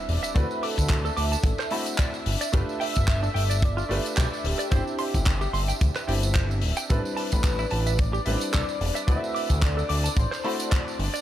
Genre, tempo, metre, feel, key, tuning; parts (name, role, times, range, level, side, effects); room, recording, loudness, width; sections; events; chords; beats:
nu-disco, nu disco; 110 BPM; 4/4; swing 56% on 16ths; A4 = 440 Hz
wide unison lead; melody; 0.0-11.0 s; G4 to E5; -33 LUFS; equal; wide subtle chorus, digital delay
clear grand piano; accompaniment; 0.0-11.0 s; G3 to B5; -34 LUFS; equal; digital delay
lush unison pad; sustained chords; 0.0-11.2 s; D4 to E5; -36 LUFS; right 1 dB; chorus, sidechain pumping
fat analog bass; bass; 0.1-11.1 s; D1 to D2; -26 LUFS; equal
tight funk drum kit; drums; 0.1-11.2 s; handclaps, hi-hat, tambourine; -32 LUFS; left 1 dB
direct-recorded clean electric guitar; riff; 0.2-11.2 s; D4 to D6; -34 LUFS; right 3 dB; wide subtle chorus
kick drum; drums; 0.4-10.8 s; -23 LUFS; equal
studio reverb; -22 LUFS; side -12 dB against mid
0.0-11.2 A section
0.4 D13; 2.3 G9; 4.7 Cadd9/G; 6.9 Am11; 9.1 D13
| 0.36 0.90 1.45 1.99 | 2.54 3.08 3.63 4.17 | 4.72 5.26 5.81 6.36 | 6.90 7.45 7.99 8.54 | 9.08 9.63 10.17 10.72